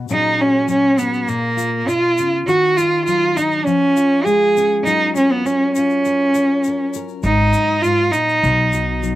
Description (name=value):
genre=acoustic folk duo or small band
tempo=101 BPM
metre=4/4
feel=straight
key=unclear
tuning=A4 = 440 Hz
part: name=fingerpicked steel-string acoustic guitar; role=accompaniment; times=0.0-9.2 s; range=G#2 to A#4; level=-24 LUFS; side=left 6 dB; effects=cassette tape
part: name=rich cello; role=melody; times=0.1-9.0 s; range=A#3 to G#4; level=-15 LUFS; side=right 1 dB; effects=none
part: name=tube shaker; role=percussion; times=0.1-9.2 s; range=none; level=-36 LUFS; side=left 12 dB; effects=none
part: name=upright bass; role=bass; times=7.2-9.2 s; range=G#1 to B1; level=-19 LUFS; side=equal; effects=none
room=moderate studio reverb, RT60 0.5 s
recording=home recording on cassette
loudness=-14 LUFS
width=side -14 dB against mid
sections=0.0-9.2 A section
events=none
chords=0.1 F#add9/A#; 1.3 A#m7; 2.5 D#m; 3.7 C#/E#; 4.9 F#maj7; 7.2 G#5; 8.4 B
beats=| 0.10 0.69 1.29 1.88 | 2.48 3.07 3.67 4.26 | 4.86 5.45 6.05 6.64 | 7.24 7.83 8.43 9.03